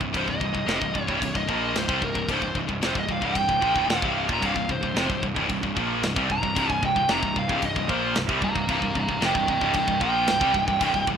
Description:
heavy metal; 112 BPM; 4/4; straight; C minor; A4 = 440 Hz
scooped high-gain guitar; riff; 0.0-11.2 s; C2 to Bb3; -29 LUFS; left 10 dB; distortion
scooped high-gain guitar; riff; 0.0-11.2 s; C2 to Bb3; -29 LUFS; right 11 dB; distortion
fuzz picked electric bass; bass; 0.0-11.2 s; C1 to C2; -32 LUFS; left 1 dB; overdrive
tight metal drum kit; drums; 0.0-11.2 s; crash cymbal, kick drum, snare drum; -30 LUFS; left 1 dB
bluesy overdriven lead guitar; melody; 0.2-11.0 s; Bb4 to Bb5; -26 LUFS; right 1 dB; distortion
distorted electric guitar; riff; 4.4-11.2 s; C2 to Bb3; -34 LUFS; equal
light reverb, studio reverb; rough home demo mix; -22 LUFS; side -7 dB against mid
0.0-11.2 A section
lead electric guitar solo 0.0-11.2
0.0 Cm

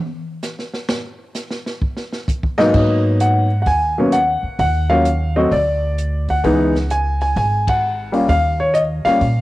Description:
jazz piano trio; 130 BPM; 4/4; swing 67% on 8ths; G# minor; A4 = 440 Hz
open jazz drum kit; drums; 0.4-9.4 s; crash cymbal, hi-hat, kick drum, ride cymbal, snare drum; -24 LUFS; right 1 dB; cassette tape
warm concert grand piano; melody; 2.6-9.4 s; G#2 to G#5; -16 LUFS; left 1 dB; cassette tape
upright bass; bass; 2.7-9.4 s; G#1 to A#2; -19 LUFS; equal
moderate spring reverb, RT60 1.8 s, small room ambience; home recording on cassette; -15 LUFS; side -17 dB against mid
0.0-2.7 A section; 2.7-9.4 B section
grand piano solo 0.0-2.7; drum solo 0.0-2.7; band accent 7.6
0.0 N.C.; 1.8 D#5; 2.7 G#m7; 4.6 D#m; 5.5 N.C.; 6.4 C#5; 8.3 D#7sus2

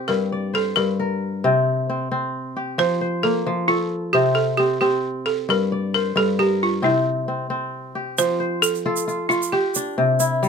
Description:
west african traditional, West African string and xylophone music; 89 BPM (dotted quarters); 12/8; straight; F major; A4 = 437 Hz
balafon; melody; 0.0-10.2 s; E4 to C5; -21 LUFS; right 2 dB
kora; arpeggios; 0.0-10.5 s; G2 to D5; -21 LUFS; left 2 dB
tube shaker; percussion; 8.2-10.5 s; -26 LUFS; right 8 dB
light reverb; -19 LUFS; side -6 dB against mid
0.0-8.2 A section; 8.2-10.5 B section
balafon solo 8.2-10.5
0.1 Gm; 1.4 C5; 2.8 F; 4.1 C5; 5.5 Gm; 6.8 C; 8.2 F; 9.5 C

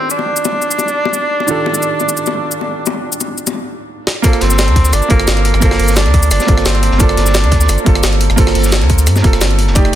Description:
liquid drum and bass; 174 BPM; 4/4; straight; G minor; A4 = 441 Hz
warm tenor saxophone; melody; 0.0-8.0 s; Bb3 to D4; -18 LUFS; right 1 dB; ping-pong delay
clear concert grand piano; accompaniment; 0.0-10.0 s; Eb3 to D5; -19 LUFS; right 4 dB; ping-pong delay
jungle sampler-style drum kit; drums; 0.1-10.0 s; hi-hat, rim click, shaker, snare drum; -18 LUFS; left 1 dB
bongos; percussion; 0.2-9.2 s; -23 LUFS; left 6 dB
crunchy breakbeat drum kit; drums; 4.2-10.0 s; hi-hat, snare drum; -24 LUFS; right 1 dB; high-pass filter on hats, high-pass filter on snare, high-pass filter on room
electronic kick drum; drums; 4.2-9.8 s; -12 LUFS; equal
warm sub bass; bass; 4.4-9.9 s; F1 to G2; -13 LUFS; equal
light reverb, studio reverb; dense, heavily limited modern master; -11 LUFS; side -12 dB against mid
0.0-4.2 A section; 4.2-10.0 B section
drum fill 4.1; drop 4.2-10.0
0.0 F13; 4.2 Gm11

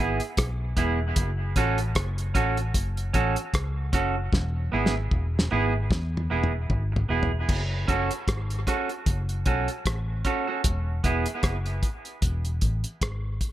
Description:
dub reggae; 76 BPM; 4/4; swing 56% on 16ths; F# minor; A4 = 436 Hz
clean electric guitar; accompaniment; 0.0-11.3 s; B3 to A4; -28 LUFS; right 4 dB; dub echo
vintage muted fingered electric bass; bass; 0.0-13.4 s; E1 to E2; -27 LUFS; equal
cloth-damped thuddy drum kit; drums; 0.2-13.5 s; crash cymbal, hi-hat, kick drum, rim click, snare drum, toms; -26 LUFS; equal
light reverb, small room reverb; -24 LUFS; side -13 dB against mid
0.0-7.5 A section; 7.5-13.5 B section
drum fill 4.3-7.5
0.0 E; 1.2 F#m; 4.3 E; 7.5 F#m; 10.6 E

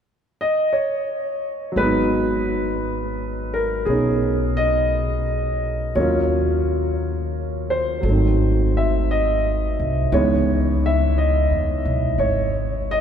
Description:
jazz ballad; 58 BPM; 4/4; swing 69% on 8ths; G# minor; A4 = 440 Hz
warm grand piano; accompaniment; 0.4-13.0 s; D#3 to E5; -20 LUFS; equal
upright bass; bass; 1.8-13.0 s; G#1 to E2; -22 LUFS; equal
wet cathedral reverb, RT60 5.6 s; recorded in a church or concert hall; -18 LUFS; side -8 dB against mid
0.0-1.8 A section; 1.8-13.0 B section
0.0 N.C.; 1.8 G#m7; 6.0 D#m7; 8.0 G#7b9; 10.1 C#m7

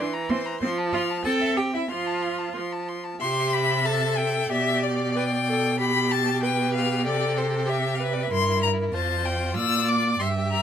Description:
quick classical-period movement for string quartet; 95 BPM; 2/4; straight; F major, C major from 3.2 s; A4 = 442 Hz
clear violin; melody; 0.0-10.6 s; C5 to E6; -26 LUFS; left 5 dB
clear violin; second line; 0.0-10.6 s; E4 to C6; -32 LUFS; left 4 dB
clear viola; accompaniment; 0.0-10.6 s; E3 to E5; -28 LUFS; right 1 dB
rich cello; bass; 0.0-10.6 s; F2 to A4; -26 LUFS; right 3 dB
light reverb; close, detailed microphones; -22 LUFS; side -9 dB against mid
0.0-3.2 A section; 3.2-10.6 B section
0.0 C7/E; 0.6 F; 1.2 C; 1.9 F; 3.2 C; 4.5 G/B; 7.1 C5; 8.3 C7/G; 8.9 F; 9.6 Bb

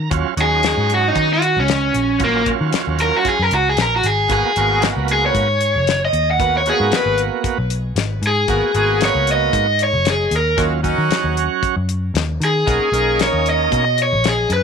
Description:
straight-eighth soul blues; 115 BPM; 4/4; swing 55% on 16ths; Eb minor; A4 = 439 Hz
bright tonewheel organ; accompaniment; 0.0-13.9 s; Gb3 to Gb4; -22 LUFS; right 12 dB; slow rotary speaker, overdrive
vintage muted picked electric bass; bass; 0.0-14.6 s; Gb1 to Eb3; -21 LUFS; left 1 dB
damped 70s drum kit; drums; 0.1-14.6 s; hi-hat, kick drum, snare drum; -23 LUFS; left 6 dB
overdriven electric guitar; melody; 0.4-14.6 s; Bb3 to Gb5; -17 LUFS; equal
bright horn section; sustained chords; 4.3-13.5 s; B3 to Cb5; -27 LUFS; left 3 dB
light reverb, small room ambience; 1960s-style stereo with parts hard left and right; -15 LUFS; side -6 dB against mid
0.0-14.6 A section
overdriven electric guitar solo 0.0-14.6
0.0 Ebm7; 4.3 Abm7; 10.6 Ebm7; 12.7 Bmaj7

